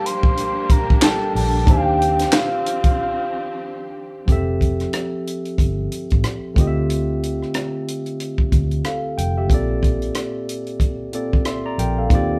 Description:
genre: R&B, neo-soul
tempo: 92 BPM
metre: 4/4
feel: swing 60% on 16ths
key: F major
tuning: A4 = 439 Hz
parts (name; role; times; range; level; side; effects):
- soft octave-layered synth lead; melody; 0.0-4.0 s; F5 to C6; -25 LUFS; equal; chorus, tremolo
- barky tine electric piano; accompaniment; 0.0-12.4 s; Bb2 to C6; -27 LUFS; equal; none
- warm studio string section; sustained chords; 0.0-4.3 s; F3 to G4; -33 LUFS; equal; none
- compact cocktail drum kit; drums; 0.1-12.3 s; handclaps, hi-hat, kick drum, rim click, snare drum; -20 LUFS; equal; none
- vintage muted fingered electric bass; bass; 1.4-12.4 s; F1 to Eb2; -24 LUFS; equal; none
room: moderate large studio reverb, RT60 0.8 s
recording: band playing live in one room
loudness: -20 LUFS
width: mono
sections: 0.0-4.3 A section; 4.3-12.4 B section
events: break 3.0-4.3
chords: 0.0 Gm7; 1.7 Ebmaj13; 4.3 Fmaj9; 6.6 Dm11; 9.5 Bbmaj7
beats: 0.37 1.02 | 1.67 2.32 2.98 3.63 | 4.28 4.93 5.58 6.24 | 6.89 7.54 8.19 8.85 | 9.50 10.15 10.80 11.46 | 12.11

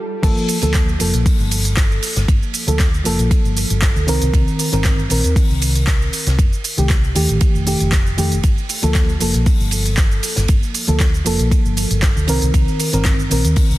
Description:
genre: deep house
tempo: 117 BPM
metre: 4/4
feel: swing 53% on 16ths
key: G minor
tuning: A4 = 440 Hz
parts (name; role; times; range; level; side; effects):
- mellow FM electric piano; stabs; 0.0-13.8 s; Eb3 to Bb4; -21 LUFS; equal; chorus, cassette tape, sidechain pumping, low-pass filter, tape echo
- hollow-body short-scale fingered electric bass; bass; 0.2-13.8 s; F1 to F2; -19 LUFS; equal; sidechain pumping
- compact cocktail drum kit; drums; 0.2-13.7 s; hi-hat, ride cymbal, snare drum; -30 LUFS; right 3 dB; high-pass filter on cymbals, small room ambience, high-pass filter on hats, soft clipping on snare, high-pass filter on snare, high-pass filter on room
- deep house drum kit; drums; 0.2-13.8 s; cabasa, crash cymbal, handclaps, hi-hat; -23 LUFS; right 1 dB; small room ambience
- electronic kick drum; drums; 0.2-13.7 s; none; -16 LUFS; equal; small room ambience
room: digital ambience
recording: dense, heavily limited modern master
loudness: -14 LUFS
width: side -17 dB against mid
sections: 0.2-13.8 A section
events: drop 0.2-13.8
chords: 0.2 Gm9; 4.1 Cm7; 6.4 F9; 8.4 Gm9; 12.3 Cm7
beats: | 0.23 0.75 1.26 1.77 | 2.28 2.80 3.31 3.82 | 4.34 4.85 5.36 5.87 | 6.39 6.90 7.41 7.92 | 8.44 8.95 9.46 9.98 | 10.49 11.00 11.52 12.03 | 12.54 13.05 13.57

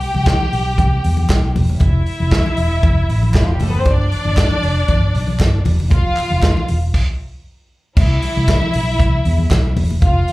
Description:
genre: disco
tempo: 117 BPM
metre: 4/4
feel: straight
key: C major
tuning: A4 = 440 Hz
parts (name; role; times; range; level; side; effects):
- clear studio string section; second line; 0.0-10.3 s; E3 to G5; -21 LUFS; left 1 dB; slapback echo
- warm soul drum kit; drums; 0.0-10.3 s; crash cymbal, hi-hat, kick drum, snare drum; -16 LUFS; equal; none
- fingered electric bass; bass; 0.1-10.2 s; E1 to E2; -16 LUFS; equal; none
- congas; percussion; 0.1-10.3 s; none; -24 LUFS; left 2 dB; none
- group handclap; percussion; 0.3-9.6 s; none; -31 LUFS; right 1 dB; slapback echo
room: little or no reverb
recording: live gig heard through the venue's PA, club reverb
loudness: -13 LUFS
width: side -19 dB against mid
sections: 0.0-8.0 A section; 8.0-10.3 A section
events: stop 6.9-8.0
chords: 0.0 Cmaj7; 1.8 Fmaj7; 3.9 G5; 5.9 N.C.; 8.0 Cmaj7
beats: 0.26 0.78 1.29 | 1.81 2.32 2.83 3.35 | 3.86 4.38 4.89 5.40 | 5.92 6.43 6.94 7.45 | 7.97 8.48 8.99 9.51 | 10.02

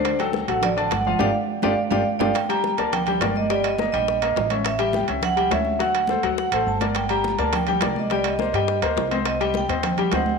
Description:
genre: latin, salsa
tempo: 208 BPM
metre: 4/4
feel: straight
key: G harmonic minor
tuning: A4 = 441 Hz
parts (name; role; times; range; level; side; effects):
- vibraphone with medium mallets; melody; 0.0-10.4 s; C5 to Bb5; -24 LUFS; right 4 dB; slapback echo
- clear baby grand piano; accompaniment; 0.0-10.4 s; D3 to G5; -25 LUFS; left 10 dB; none
- upright bass; bass; 0.0-10.4 s; G1 to G2; -30 LUFS; right 2 dB; none
- timbales; percussion; 0.0-10.3 s; none; -30 LUFS; right 15 dB; none
- bongos; percussion; 0.1-10.3 s; none; -32 LUFS; left 11 dB; none
- congas; percussion; 0.1-10.4 s; none; -29 LUFS; right 3 dB; none
room: moderate plate reverb, RT60 2.3 s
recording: 1960s-style stereo with parts hard left and right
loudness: -19 LUFS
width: side -4 dB against mid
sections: 0.0-2.4 A section; 2.4-10.4 B section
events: drum fill 1.2-2.4, 6.4-7.0; band accent 1.2-2.4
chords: 0.1 D; 1.2 G5; 2.4 Gm; 3.5 Eb/G; 4.7 A7; 5.8 D7; 7.0 Gm; 8.1 Cm7; 9.3 Cmadd9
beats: | 0.05 0.34 0.62 0.91 | 1.20 1.49 1.78 2.06 | 2.35 2.64 2.93 3.21 | 3.50 3.79 4.08 4.37 | 4.65 4.94 5.23 5.52 | 5.80 6.09 6.38 6.67 | 6.96 7.24 7.53 7.82 | 8.11 8.39 8.68 8.97 | 9.26 9.55 9.84 10.12

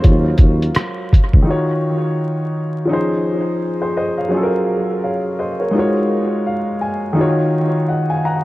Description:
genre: lo-fi hip hop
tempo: 84 BPM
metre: 4/4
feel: swing 59% on 16ths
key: Eb dorian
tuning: A4 = 440 Hz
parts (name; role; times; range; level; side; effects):
- warm upright piano; accompaniment; 0.0-8.4 s; Eb3 to Bb5; -17 LUFS; equal; cassette tape, analog delay
- mellow tuba; bass; 0.0-1.5 s; Db2 to Eb2; -17 LUFS; equal; none
- lo-fi sampler-style drum kit; drums; 0.0-1.5 s; hi-hat, kick drum, rim click; -12 LUFS; equal; none
room: light reverb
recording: echo-heavy mix, vinyl crackle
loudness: -15 LUFS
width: side -17 dB against mid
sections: 0.0-1.5 A section; 1.5-8.4 B section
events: upright piano solo 0.0-1.5; upright piano fill 6.1-7.2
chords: 0.0 Ebm9; 2.9 Dbmaj9/F; 4.3 Gbmaj9; 5.7 Ab13sus4; 7.2 Ebm9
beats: 0.03 0.74 | 1.46 2.17 2.89 3.60 | 4.32 5.03 5.74 6.46 | 7.17 7.89

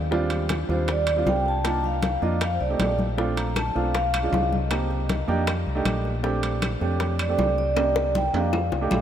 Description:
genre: Afro-Cuban jazz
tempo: 157 BPM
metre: 4/4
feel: straight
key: Bb major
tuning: A4 = 440 Hz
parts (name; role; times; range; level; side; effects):
- deep dub fingered electric bass; bass; 0.0-9.0 s; Bb1 to F2; -26 LUFS; left 1 dB; none
- warm baby grand piano; accompaniment; 0.1-9.0 s; C3 to G4; -28 LUFS; right 4 dB; none
- bongos; percussion; 0.1-9.0 s; none; -34 LUFS; left 7 dB; none
- congas; percussion; 0.1-9.0 s; none; -32 LUFS; left 2 dB; none
- timbales; percussion; 0.3-9.0 s; none; -33 LUFS; right 4 dB; none
- vibraphone with medium mallets; melody; 0.7-9.0 s; C5 to Bb5; -27 LUFS; right 1 dB; none
- claves; percussion; 3.6-9.0 s; none; -41 LUFS; left 8 dB; none
room: wet cathedral reverb, RT60 5.6 s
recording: in a vast, echoing space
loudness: -21 LUFS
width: side -9 dB against mid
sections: 0.0-9.0 A section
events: drum fill 7.8-9.0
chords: 0.1 Ebmaj13; 1.6 Cm11; 2.4 F9; 3.2 Bbmaj7; 3.9 Bdim7; 4.7 Cm7; 5.5 F13; 6.2 Bbmaj13; 7.8 Cm7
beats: | 0.12 0.50 0.88 1.27 | 1.65 2.03 2.41 2.80 | 3.18 3.56 3.94 4.33 | 4.71 5.09 5.47 5.86 | 6.24 6.62 7.00 7.39 | 7.77 8.15 8.53 8.92

